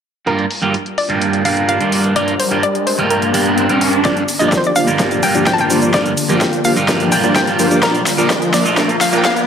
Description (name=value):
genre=EDM, festival progressive house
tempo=127 BPM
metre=4/4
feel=straight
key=G minor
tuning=A4 = 440 Hz
part: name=hollow square pluck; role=melody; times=0.3-9.5 s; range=Bb4 to A5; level=-19 LUFS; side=left 1 dB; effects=chorus, digital delay
part: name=electric guitar at the edge of break-up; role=accompaniment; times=0.3-9.2 s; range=G2 to F4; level=-18 LUFS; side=right 3 dB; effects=phaser, sidechain pumping
part: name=lush unison pad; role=sustained chords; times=0.8-9.5 s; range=D3 to Bb4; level=-23 LUFS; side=left 2 dB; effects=chorus, phaser, sidechain pumping
part: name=big-room dance drum kit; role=drums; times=0.3-9.5 s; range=cabasa, hi-hat, snare drum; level=-21 LUFS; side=equal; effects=overdrive, high-pass filter on hats, low-pass filter on hats, high-pass filter on snare, low-pass filter on snare, high-pass filter on perc, low-pass filter on perc
part: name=riser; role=sound effects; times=1.9-9.5 s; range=none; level=-23 LUFS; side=equal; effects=none
part: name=big supersaw lead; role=riff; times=4.0-9.4 s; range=F3 to G5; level=-17 LUFS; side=equal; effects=sidechain pumping, low-pass filter, digital delay
part: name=saturated sub bass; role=bass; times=4.0-9.5 s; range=none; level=barely audible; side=none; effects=none
part: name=electronic kick drum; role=drums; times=4.0-9.3 s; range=none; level=-21 LUFS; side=equal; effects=overdrive, high-pass filter on kick, high-pass filter on room
room=moderate lush hall reverb, RT60 2.0 s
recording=high-pass filter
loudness=-12 LUFS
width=side -7 dB against mid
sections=0.3-4.0 A section; 4.0-9.5 B section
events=filter sweep on analog synth pad 0.3-4.0, 4.0-9.5; riser 1.9-4.0, 4.0-9.5; build-up 4.0-9.5; drum fill 4.0-9.5; filter sweep on supersaw synth 4.0-9.5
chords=0.3 Gm7; 7.8 Bb